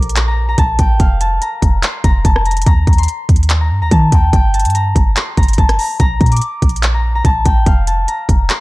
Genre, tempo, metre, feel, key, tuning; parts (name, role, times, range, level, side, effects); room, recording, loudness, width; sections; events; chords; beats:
hip hop, trap; 144 BPM; 4/4; half-time; Bb major; A4 = 440 Hz
concert harp; melody; 0.0-8.6 s; Bb4 to D6; -19 LUFS; left 2 dB
clean 808-style bass; bass; 0.0-8.5 s; F1 to Eb3; -14 LUFS; equal
trap drum kit; drums; 0.0-8.6 s; handclaps, hi-hat, kick drum, rim click; -13 LUFS; equal
little or no reverb; dark, warm production; -11 LUFS; side -20 dB against mid
0.0-8.6 A section
0.0 Bb; 1.0 Fsus4; 2.7 Eb5; 4.3 Gm; 6.0 Bb; 7.7 Fsus4
0.16 0.58 | 1.00 1.41 1.83 2.25 | 2.66 3.08 3.50 3.91 | 4.33 4.75 5.16 5.58 | 6.00 6.41 6.83 7.25 | 7.66 8.08 8.50